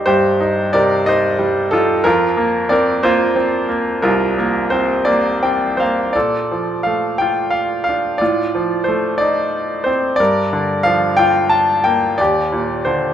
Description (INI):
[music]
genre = classical, lyrical solo piano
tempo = 60 BPM (dotted quarters)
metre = 6/8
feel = rubato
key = Bb major from 6.1 s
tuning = A4 = 440 Hz
[part]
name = bright grand piano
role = solo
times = 0.0-13.1 s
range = C2 to A5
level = -14 LUFS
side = equal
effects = none
[sound]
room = moderate recital hall reverb, RT60 1.4 s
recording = minimal, uncompressed stereo recording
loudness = -14 LUFS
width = side -10 dB against mid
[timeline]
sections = 0.0-6.1 A section; 6.1-13.1 B section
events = grand piano fill 5.1-6.1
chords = 0.0 Cm7; 2.0 Fsus4; 6.1 Bbmaj7; 8.2 F7/A; 10.2 Gm7; 12.2 Ebmaj7